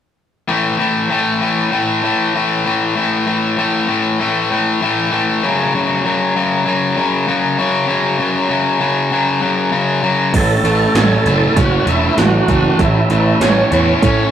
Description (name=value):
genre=classic rock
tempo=98 BPM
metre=4/4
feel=straight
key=A major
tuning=A4 = 441 Hz
part: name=crunchy overdriven guitar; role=riff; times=0.5-14.3 s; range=F#2 to E4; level=-14 LUFS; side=left 2 dB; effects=none
part: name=fuzz picked electric bass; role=bass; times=10.3-14.2 s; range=E1 to A2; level=-16 LUFS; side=right 2 dB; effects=overdrive
part: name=80s electronic pad drums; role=drums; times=10.3-14.2 s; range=crash cymbal, hi-hat, kick drum, snare drum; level=-17 LUFS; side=right 2 dB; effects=none
part: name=overdriven tonewheel organ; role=melody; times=10.4-14.3 s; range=C#4 to A4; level=-17 LUFS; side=right 4 dB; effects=chorus vibrato, fast rotary speaker
room=moderate studio reverb, RT60 0.5 s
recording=rough rehearsal-room recording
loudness=-13 LUFS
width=side -9 dB against mid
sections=0.5-10.3 A section; 10.3-14.3 B section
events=none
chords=0.5 A5; 5.4 F#5; 10.3 A